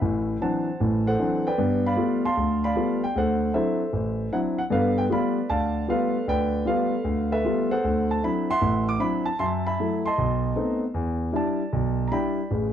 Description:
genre	solo jazz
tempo	154 BPM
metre	4/4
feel	swing 66% on 8ths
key	D mixolydian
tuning	A4 = 441 Hz
part	warm concert grand piano	solo	0.0-12.7 s	A1 to D6	-22 LUFS	equal	none
room	moderate studio reverb, RT60 0.5 s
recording	dark, warm production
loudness	-22 LUFS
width	side -9 dB against mid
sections	0.0-12.7 A section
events	none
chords	0.0 D9; 1.6 G9; 3.1 D9; 4.7 G9; 7.8 D9; 9.4 F#m7b5; 10.2 B7b9; 11.0 Em7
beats	| 0.01 0.41 0.80 1.19 | 1.58 1.97 2.36 2.75 | 3.14 3.53 3.92 4.32 | 4.71 5.10 5.49 5.88 | 6.27 6.66 7.05 7.44 | 7.83 8.22 8.61 9.00 | 9.39 9.78 10.17 10.56 | 10.95 11.34 11.73 12.12 | 12.51

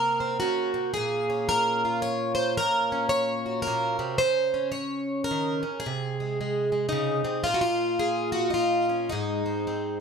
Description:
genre	folk, solo fingerstyle acoustic guitar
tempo	110 BPM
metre	3/4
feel	swing 60% on 8ths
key	unclear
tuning	A4 = 439 Hz
part	picked plugged-in twelve-string acoustic guitar	solo	0.0-10.0 s	Ab2 to Db5	-24 LUFS	equal	none
room	light reverb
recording	close, detailed microphones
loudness	-24 LUFS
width	side -6 dB against mid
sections	0.0-10.0 A section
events	none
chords	0.0 Abadd9/C (rootless); 1.0 Bbm; 2.6 Gb/Bb; 4.2 Bbmadd9/Db; 5.8 Ab/C; 7.5 Bbm; 9.1 Ab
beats	0.41 | 0.96 1.50 2.04 | 2.59 3.13 3.67 | 4.22 4.76 5.30 | 5.85 6.39 6.93 | 7.48 8.02 8.56 | 9.11 9.65

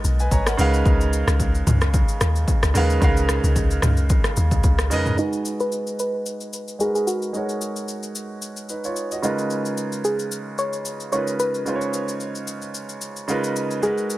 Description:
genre	amapiano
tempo	111 BPM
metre	4/4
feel	swing 55% on 16ths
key	unclear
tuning	A4 = 440 Hz
part	bright concert grand piano	accompaniment	0.0-14.2 s	C#3 to A#5	-25 LUFS	right 2 dB	low-pass filter
part	deep log drum bass	bass	0.0-5.2 s	G#1 to E#2	-20 LUFS	equal	none
part	deep house drum kit	drums	0.0-14.2 s	hi-hat, kick drum, rim click, shaker, toms	-23 LUFS	equal	none
part	soft round pluck	melody	5.2-14.2 s	D#4 to C#5	-24 LUFS	equal	chorus, low-pass filter, digital delay
room	little or no reverb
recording	none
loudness	-19 LUFS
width	side -16 dB against mid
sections	0.0-5.2 A section; 5.2-14.2 B section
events	drop 0.0-5.2; filter sweep 5.2-14.2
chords	0.0 G#m9; 0.6 C#13; 5.2 G#m9; 9.2 C#13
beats	0.31 | 0.85 1.40 1.94 2.48 | 3.02 3.56 4.10 4.64 | 5.18 5.72 6.26 6.80 | 7.34 7.88 8.42 8.96 | 9.50 10.04 10.58 11.12 | 11.66 12.21 12.75 13.29 | 13.83

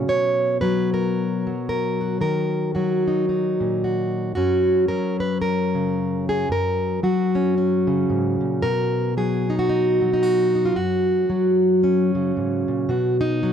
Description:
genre	folk, solo fingerstyle acoustic guitar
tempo	112 BPM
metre	4/4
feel	swing 59% on 8ths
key	F# major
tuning	A4 = 439 Hz
part	fingerpicked plugged-in steel-string acoustic guitar	solo	0.0-13.5 s	F#2 to C#5	-19 LUFS	equal	none
room	light reverb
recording	dark, warm production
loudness	-19 LUFS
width	side -8 dB against mid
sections	0.0-12.9 A section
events	none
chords	0.1 B5; 2.2 D#m; 4.4 F#; 8.6 B; 10.8 F#sus2; 12.9 B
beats	| 0.08 0.62 1.15 1.69 | 2.22 2.76 3.29 3.83 | 4.36 4.90 5.43 5.97 | 6.50 7.03 7.57 8.10 | 8.64 9.17 9.70 10.24 | 10.77 11.30 11.84 12.37 | 12.90 13.44

